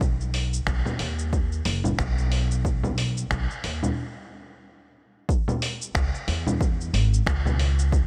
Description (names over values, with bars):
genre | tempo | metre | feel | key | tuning
organic downtempo | 91 BPM | 4/4 | swing 57% on 16ths | C# minor | A4 = 441 Hz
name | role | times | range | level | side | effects
upright bass | bass | 0.0-8.1 s | F#1 to E2 | -27 LUFS | equal | sidechain pumping
dusty soul sampler-style drum kit | drums | 0.0-8.1 s | congas, finger snaps, hi-hat, shaker | -31 LUFS | equal | none
electronic kick drum | drums | 0.0-8.1 s | none | -28 LUFS | equal | none
room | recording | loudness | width
light reverb | none | -25 LUFS | mono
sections
0.0-5.3 A section; 5.3-8.1 B section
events
stop 4.0-5.3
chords
none